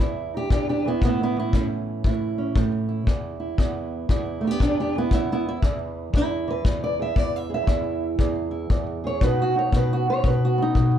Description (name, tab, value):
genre	acoustic country blues, solo or duo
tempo	117 BPM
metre	4/4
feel	swing 64% on 8ths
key	E major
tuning	A4 = 441 Hz
part	fingerpicked steel-string acoustic guitar	melody	0.0-11.0 s	E2 to E5	-23 LUFS	right 1 dB	slapback echo
part	kick drum	drums	0.5-10.9 s	none	-23 LUFS	left 1 dB	none
room	moderate small room reverb, RT60 0.6 s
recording	dark, warm production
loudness	-21 LUFS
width	side -10 dB against mid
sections	0.0-11.0 A section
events	steel-string acoustic guitar solo 0.0-11.0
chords	0.0 E5; 1.0 A; 3.1 E; 9.2 B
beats	0.51 | 1.02 1.53 2.05 2.56 | 3.07 3.59 4.10 4.61 | 5.12 5.63 6.15 6.66 | 7.17 7.68 8.20 8.71 | 9.22 9.73 10.24 10.76